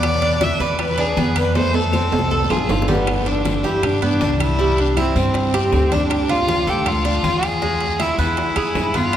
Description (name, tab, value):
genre	latin, Cuban son and guajira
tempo	158 BPM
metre	4/4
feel	straight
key	unclear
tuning	A4 = 438 Hz
part	warm violin	melody	0.0-9.2 s	B3 to E5	-21 LUFS	equal	none
part	Cuban tres	arpeggios	0.0-9.2 s	G3 to B4	-22 LUFS	right 1 dB	none
part	upright bass	bass	0.0-9.2 s	G1 to G2	-22 LUFS	equal	none
part	bongos	percussion	0.0-9.2 s	none	-30 LUFS	left 3 dB	none
part	claves	percussion	0.0-9.2 s	none	-37 LUFS	left 2 dB	none
part	congas	percussion	0.0-9.2 s	none	-28 LUFS	left 2 dB	none
part	guiro	percussion	0.0-9.2 s	none	-35 LUFS	left 5 dB	none
part	timbales	percussion	0.0-9.2 s	none	-27 LUFS	right 3 dB	none
room	wet cathedral reverb, RT60 6.1 s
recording	recorded in a church or concert hall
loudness	-16 LUFS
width	side -10 dB against mid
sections	0.0-3.1 A section; 3.1-9.2 B section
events	drum fill 1.6-3.1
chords	0.0 E7; 1.6 F; 3.1 G; 4.6 C; 6.1 Dm; 7.6 E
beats	| 0.03 0.41 0.79 1.17 | 1.55 1.93 2.31 2.69 | 3.07 3.45 3.83 4.21 | 4.59 4.97 5.35 5.73 | 6.11 6.49 6.86 7.24 | 7.62 8.00 8.38 8.75 | 9.13